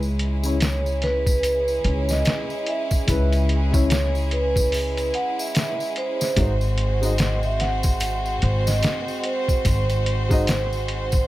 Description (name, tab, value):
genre	trip hop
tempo	73 BPM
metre	4/4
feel	swing 60% on 16ths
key	C# minor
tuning	A4 = 437 Hz
part	clear studio violin section	sustained chords	0.0-11.3 s	G#3 to B#4	-30 LUFS	equal	none
part	upright bass	bass	0.0-11.3 s	G#1 to C#2	-23 LUFS	equal	none
part	tambourine	percussion	0.0-11.3 s	none	-34 LUFS	left 1 dB	none
part	trip hop sampler-style drum kit	drums	0.2-11.3 s	hi-hat, kick drum, snare drum	-23 LUFS	equal	none
part	felt-muted upright piano	accompaniment	0.4-10.5 s	C#3 to D#5	-28 LUFS	left 3 dB	harmonic tremolo, tape echo
part	vibraphone with soft mallets	melody	0.6-11.3 s	B4 to F#5	-26 LUFS	right 2 dB	tape echo
room	small room ambience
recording	none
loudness	-19 LUFS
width	side -16 dB against mid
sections	0.0-11.3 A section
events	none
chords	0.0 C#m7; 6.4 G#7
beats	0.61 1.43 2.25 | 3.08 3.90 4.72 5.54 | 6.37 7.19 8.01 8.83 | 9.65 10.47